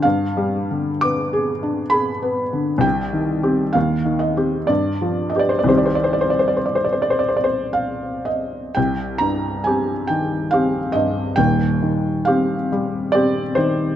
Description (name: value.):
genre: classical, romantic nocturne for solo piano.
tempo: 57-72 BPM.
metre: 3/4.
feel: rubato.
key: C minor.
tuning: A4 = 443 Hz.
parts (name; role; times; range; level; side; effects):
felt-muted upright piano; solo; 0.0-14.0 s; Eb1 to D6; -17 LUFS; equal; none.
room: moderate scoring stage reverb, RT60 1.9 s.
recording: close, detailed microphones.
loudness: -17 LUFS.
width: side -11 dB against mid.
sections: 0.0-8.8 A section; 8.8-14.0 B section.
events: none.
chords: 0.0 G7b9; 2.8 Cm; 3.8 Cm/Eb; 4.7 G7; 5.7 Cm; 11.4 Cm/Eb.